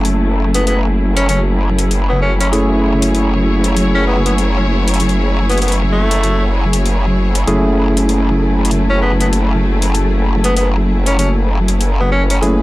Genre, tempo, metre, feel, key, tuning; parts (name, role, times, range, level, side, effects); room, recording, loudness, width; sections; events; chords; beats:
glitch hop; 97 BPM; 4/4; swing 60% on 16ths; F# minor; A4 = 442 Hz
bright studio string section; sustained chords; 0.0-12.6 s; F#3 to C#5; -21 LUFS; left 1 dB; low-pass filter
barky tine electric piano; stabs; 0.0-12.6 s; A3 to G#4; -19 LUFS; right 1 dB; low-pass filter, tape echo
growl bass; bass; 0.0-12.6 s; F#1; -15 LUFS; equal; chorus
electronic hi-hat; drums; 0.0-12.6 s; -22 LUFS; left 2 dB
clear tenor saxophone; melody; 0.5-12.4 s; A3 to C#4; -20 LUFS; equal; vintage 12-bit sampler grit, tape echo
moderate studio reverb, RT60 0.6 s; dark, warm production; -12 LUFS; side -18 dB against mid
0.0-12.6 A section
0.0 F#m9
| 0.05 0.67 1.29 1.91 | 2.52 3.14 3.76 4.38 | 5.00 5.62 6.24 6.85 | 7.47 8.09 8.71 9.33 | 9.95 10.57 11.18 11.80 | 12.42